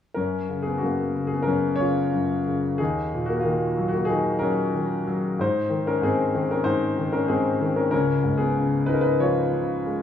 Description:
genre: classical, lyrical solo piano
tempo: 92 BPM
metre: 4/4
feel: rubato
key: F# major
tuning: A4 = 445 Hz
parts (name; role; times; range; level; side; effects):
- warm grand piano; solo; 0.1-10.0 s; C#2 to C#5; -21 LUFS; left 2 dB; none
room: moderate recital hall reverb, RT60 1.4 s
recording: studio reverb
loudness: -21 LUFS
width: side -9 dB against mid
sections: 0.1-10.0 A section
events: none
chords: 0.1 F#; 2.8 D#m; 5.4 G#; 7.9 C#

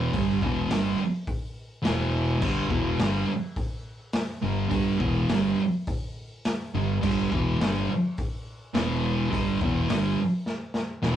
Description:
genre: garage rock duo or trio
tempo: 105 BPM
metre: 4/4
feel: straight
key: unclear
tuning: A4 = 440 Hz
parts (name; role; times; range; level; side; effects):
- thick fuzz guitar; riff; 0.0-11.2 s; E2 to G3; -24 LUFS; right 1 dB; distortion
- modern bright fingered electric bass; bass; 0.0-11.2 s; E1 to G1; -31 LUFS; left 1 dB; none
- raw garage drum kit; drums; 0.1-11.2 s; crash cymbal, hi-hat, kick drum, snare drum; -30 LUFS; left 1 dB; none
room: wet studio ambience, RT60 0.5 s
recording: rough rehearsal-room recording, tube saturation, cassette tape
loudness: -24 LUFS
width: side -10 dB against mid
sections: 0.0-11.2 A section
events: drum fill 10.5-11.2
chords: 0.1 G5; 1.9 E5; 2.4 G5; 8.7 E5; 9.3 G5

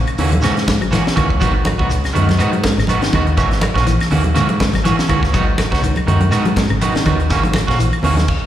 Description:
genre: afrobeat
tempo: 122 BPM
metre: 4/4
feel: swing 54% on 16ths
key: G# minor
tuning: A4 = 440 Hz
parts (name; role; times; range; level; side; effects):
- clean electric guitar; arpeggios; 0.0-8.3 s; C#3 to G#3; -24 LUFS; left 6 dB; slapback echo
- fingered electric bass with an envelope filter; bass; 0.0-8.3 s; G#1 to G#2; -17 LUFS; equal; none
- tight funk drum kit; drums; 0.1-8.4 s; crash cymbal, hi-hat, kick drum, snare drum; -22 LUFS; left 1 dB; none
- claves; percussion; 0.1-8.0 s; none; -30 LUFS; left 3 dB; slapback echo
- electric guitar at the edge of break-up; stabs; 0.2-8.2 s; D#3 to F#4; -20 LUFS; right 4 dB; spring reverb, plate reverb, slapback echo
- congas; percussion; 0.2-8.3 s; none; -21 LUFS; right 1 dB; slapback echo
- shekere; percussion; 0.2-8.2 s; none; -26 LUFS; equal; slapback echo
room: light reverb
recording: live gig heard through the venue's PA, recital hall reverb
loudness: -13 LUFS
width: side -11 dB against mid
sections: 0.0-8.5 A section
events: stop 8.3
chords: 0.0 F#7; 1.4 G#m7; 3.4 F#7/G#; 5.3 G#m7; 7.3 F#7/G#

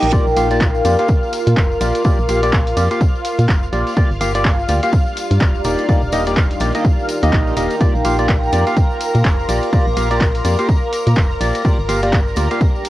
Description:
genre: piano house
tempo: 125 BPM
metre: 4/4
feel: swing 59% on 16ths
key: Bb major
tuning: A4 = 440 Hz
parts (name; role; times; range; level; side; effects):
- analog string pad; sustained chords; 0.1-12.9 s; F4 to Bb5; -26 LUFS; equal; ensemble chorus, phaser, sidechain pumping, cassette tape
- percussive organ stab; riff; 0.0-12.6 s; Bb3 to F5; -20 LUFS; equal; wide subtle chorus, sidechain pumping, cassette tape, analog delay
- organ-like FM bass; bass; 0.0-12.5 s; D1 to Bb2; -19 LUFS; equal; sidechain pumping
- punchy analog drum machine; drums; 0.0-12.9 s; handclaps, hi-hat, ride cymbal; -26 LUFS; equal; cassette tape
- tambourine; percussion; 0.0-12.9 s; none; -36 LUFS; left 8 dB; none
- deep dark ambient pad; texture; 0.0-12.9 s; Eb4 to D6; -22 LUFS; equal; chorus, built-in reverb, sidechain pumping, cassette tape
- electronic kick drum; drums; 0.1-12.7 s; none; -15 LUFS; equal; cassette tape
room: moderate studio reverb, RT60 0.6 s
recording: home recording on cassette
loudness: -13 LUFS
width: side -15 dB against mid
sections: 0.0-12.9 A section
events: none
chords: 0.1 Bb6; 4.0 Gm7; 5.6 Ebmaj7; 7.8 Bb6; 11.6 Gm7

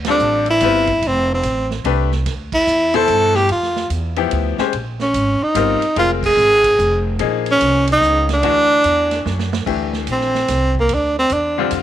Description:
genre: modal jazz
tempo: 146 BPM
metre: 3/4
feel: swing 65% on 8ths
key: unclear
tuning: A4 = 440 Hz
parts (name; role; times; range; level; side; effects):
- upright bass; bass; 0.0-11.8 s; F1 to G2; -22 LUFS; right 1 dB; none
- vintage drum kit; drums; 0.0-11.8 s; crash cymbal, hi-hat, kick drum, ride cymbal, snare drum; -29 LUFS; right 7 dB; none
- breathy tenor saxophone; melody; 0.1-11.7 s; Bb3 to A4; -15 LUFS; right 1 dB; none
- bright upright piano; accompaniment; 0.1-11.8 s; B2 to C5; -22 LUFS; left 13 dB; none
room: light reverb, small room ambience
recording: 1960s-style stereo with parts hard left and right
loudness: -14 LUFS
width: side -11 dB against mid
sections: 0.0-9.7 A section; 9.7-11.8 B section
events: band accent 0.0, 2.5, 6.2; drum fill 9.2-9.7; tenor saxophone solo 9.7-11.8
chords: 0.0 Dm9; 4.7 Bbm9; 8.4 D; 9.7 Gm9

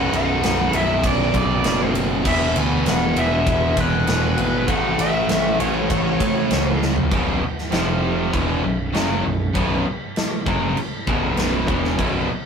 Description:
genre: hard rock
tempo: 99 BPM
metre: 4/4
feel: straight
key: unclear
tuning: A4 = 436 Hz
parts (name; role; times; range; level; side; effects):
- nasal lead guitar with a parked wah; melody; 0.0-6.8 s; B4 to G#5; -23 LUFS; left 1 dB; overdrive
- high-gain distorted guitar; riff; 0.0-12.3 s; B1 to A3; -25 LUFS; equal; distortion
- overdriven electric guitar; riff; 0.0-12.3 s; B1 to A3; -23 LUFS; equal; none
- growling picked electric bass; bass; 0.0-12.3 s; B0 to A2; -25 LUFS; equal; overdrive
- big rock drum kit; drums; 0.1-12.1 s; crash cymbal, kick drum, ride cymbal, snare drum, toms; -23 LUFS; equal; none
room: moderate studio reverb, RT60 0.6 s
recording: rough rehearsal-room recording, tube saturation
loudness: -17 LUFS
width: side -6 dB against mid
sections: 0.0-7.1 A section; 7.1-12.5 B section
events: drum fill 6.8-7.1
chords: 0.0 Bm; 2.2 E5; 4.7 A; 7.1 B5; 7.7 F5; 8.3 B5

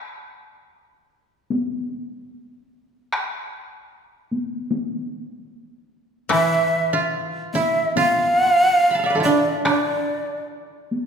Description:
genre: japanese traditional, Japanese chamber music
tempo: 73 BPM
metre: 4/4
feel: rubato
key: D kumoi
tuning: A4 = 439 Hz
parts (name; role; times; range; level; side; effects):
- taiko ensemble; percussion; 1.5-11.1 s; none; -27 LUFS; left 2 dB; none
- breathy shakuhachi; melody; 6.3-10.5 s; D5 to F5; -19 LUFS; equal; none
- koto; second line; 6.3-11.1 s; D4 to B5; -22 LUFS; right 3 dB; none
- koto; accompaniment; 6.3-8.8 s; E3; -25 LUFS; left 2 dB; none
room: wet scoring stage reverb, RT60 2.1 s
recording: recorded in a church or concert hall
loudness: -18 LUFS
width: side -6 dB against mid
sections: 0.0-11.1 A section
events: none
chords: none

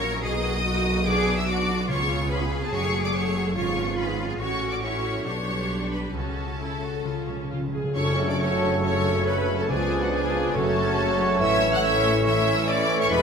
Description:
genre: classical, dramatic, fast romantic movement for symphony orchestra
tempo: 130-146 BPM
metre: 4/4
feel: rubato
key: F# minor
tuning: A4 = 440 Hz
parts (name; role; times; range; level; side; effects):
- rich symphonic violin section; melody; 0.0-13.2 s; F#5 to F#6; -30 LUFS; left 2 dB; none
- bright symphonic violin section; second line; 0.0-13.2 s; F#4 to F#5; -33 LUFS; left 2 dB; none
- clear symphonic viola section; accompaniment; 0.0-13.2 s; F#3 to A4; -32 LUFS; right 2 dB; none
- concert harp; arpeggios; 0.0-13.2 s; E2 to F#5; -31 LUFS; left 7 dB; none
- rich symphonic cello section; bass; 0.0-13.2 s; C#2 to A#4; -31 LUFS; right 2 dB; none
- rich symphonic double bass section; bass; 0.0-13.2 s; E1 to C#2; -30 LUFS; right 2 dB; none
- timpani; percussion; 1.9-3.3, 7.1-11.2 s; F#2 to C#3; -33 LUFS; equal; none
- mellow hollow small flute group; second line; 7.9-13.2 s; F#4 to F#5; -30 LUFS; right 3 dB; none
- warm trombone section; sustained chords; 7.9-13.2 s; C#3 to B3; -32 LUFS; right 5 dB; none
- clear oboe; second line; 8.0-13.2 s; C#5 to D5; -33 LUFS; right 1 dB; none
- mellow clarinet; second line; 8.0-13.2 s; G#4 to B4; -34 LUFS; left 1 dB; none
- mellow bassoon; accompaniment; 8.0-13.2 s; C#3 to F#3; -30 LUFS; right 2 dB; none
- mellow French horn section; sustained chords; 8.0-13.2 s; C#4 to F#4; -33 LUFS; left 3 dB; none
- mellow trumpet section; stabs; 8.0-13.2 s; G#4 to E5; -29 LUFS; left 1 dB; none
- tam-tam; percussion; 8.0-9.7 s; none; -37 LUFS; left 2 dB; none
room: wet scoring stage reverb, RT60 1.8 s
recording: none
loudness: -22 LUFS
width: side -6 dB against mid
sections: 0.0-8.0 A section; 8.0-13.2 B section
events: timpani fill 7.0-8.0; band accent 8.0-8.4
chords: 0.2 Bmaj7; 1.1 Bm; 1.9 C#7; 2.7 F#m; 3.6 C#7/G#; 4.4 F#m/A; 5.2 G/B; 6.1 F#m/C#; 7.0 C#; 8.0 F#m; 9.7 C#7b9; 10.6 F#m; 11.4 A

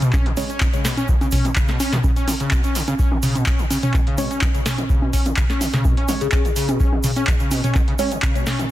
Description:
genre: acid house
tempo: 126 BPM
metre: 4/4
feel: straight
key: unclear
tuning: A4 = 440 Hz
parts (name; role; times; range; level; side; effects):
- overdriven acid bass; riff; 0.0-8.7 s; Cb3 to Db4; -25 LUFS; equal; tube saturation, ensemble chorus, cassette tape, sidechain pumping, ping-pong delay
- booming analog drum machine; drums; 0.0-8.7 s; congas, handclaps, hi-hat, snare drum, toms; -22 LUFS; equal; none
- egg shaker; percussion; 0.0-8.7 s; none; -34 LUFS; right 4 dB; none
- electronic kick drum; drums; 0.1-8.3 s; none; -20 LUFS; equal; none
- deep mellow chord stab; stabs; 0.4-0.5, 4.2-8.1 s; Ab3 to Db5; -28 LUFS; right 2 dB; chorus, ping-pong delay
- kalimba; melody; 6.2-6.4 s; Ab4; -28 LUFS; left 12 dB; ping-pong delay
room: digital ambience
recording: dense, heavily limited modern master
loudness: -17 LUFS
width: side -14 dB against mid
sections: 0.0-8.7 A section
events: none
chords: 0.0 Db5

